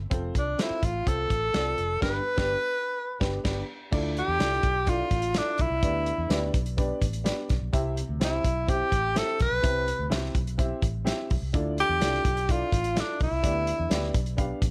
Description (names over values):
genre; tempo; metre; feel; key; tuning
uptempo 1960s-style soul; 126 BPM; 4/4; straight; C major; A4 = 440 Hz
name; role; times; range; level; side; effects
vintage muted fingered electric bass; bass; 0.0-14.7 s; F1 to E2; -34 LUFS; equal; none
dark upright piano; accompaniment; 0.1-14.6 s; G2 to F5; -36 LUFS; equal; plate reverb
warm soul drum kit; drums; 0.1-14.7 s; crash cymbal, hi-hat, kick drum, snare drum; -30 LUFS; equal; none
breathy tenor saxophone; melody; 0.4-14.1 s; D4 to B4; -29 LUFS; equal; plate reverb
room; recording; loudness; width
light reverb; none; -27 LUFS; mono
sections
0.0-3.9 A section; 3.9-14.7 B section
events
band accent 2.0-3.9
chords
0.1 F; 2.0 G; 3.9 Dmadd9; 5.8 G; 7.7 C; 11.5 Dmadd9; 13.4 G